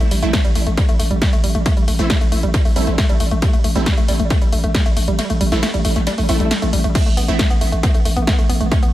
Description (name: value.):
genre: driving peak-time techno.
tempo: 136 BPM.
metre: 4/4.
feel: straight.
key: A minor.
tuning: A4 = 440 Hz.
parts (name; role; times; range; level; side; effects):
woody wave-folded pluck; riff; 0.0-8.9 s; G3 to B3; -22 LUFS; equal; chorus, overdrive, sidechain pumping, tape echo.
growling 808-style bass; bass; 0.0-8.9 s; A1; -20 LUFS; equal; overdrive, sidechain pumping, low-pass filter.
techno drum kit; drums; 0.0-8.9 s; crash cymbal, hi-hat, ride cymbal, snare drum; -24 LUFS; equal; overdrive, tape echo.
rave stab; stabs; 0.2-7.4 s; A3 to E4; -25 LUFS; right 3 dB; chorus, built-in reverb, sidechain pumping, tape echo.
electronic kick drum; drums; 0.3-8.8 s; none; -16 LUFS; equal; overdrive.
swell; sound effects; 6.3-7.0 s; none; -29 LUFS; left 4 dB; none.
room: light reverb.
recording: echo-heavy mix.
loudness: -14 LUFS.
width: side -14 dB against mid.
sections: 0.0-8.9 A section.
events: kick drops out 5.2-7.0; swell 6.3-7.0.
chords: 0.0 Am.